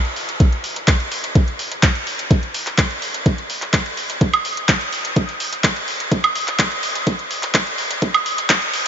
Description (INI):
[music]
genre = progressive house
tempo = 126 BPM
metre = 4/4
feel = straight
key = none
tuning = none
[part]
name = deep house drum kit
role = drums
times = 0.0-8.8 s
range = handclaps, hi-hat, woodblock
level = -19 LUFS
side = equal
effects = high-pass filter on snare, high-pass filter on hats, high-pass filter on perc
[part]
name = electronic kick drum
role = drums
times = 0.4-8.6 s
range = none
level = -16 LUFS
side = equal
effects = overdrive
[sound]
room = moderate huge ambient reverb, RT60 8.2 s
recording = dreamy mix soaked in reverb, high-pass filter, nothing above 7.5 kHz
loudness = -17 LUFS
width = side -8 dB against mid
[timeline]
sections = 0.0-8.9 A section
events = build-up 0.0-8.9; filter sweep 0.0-8.9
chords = none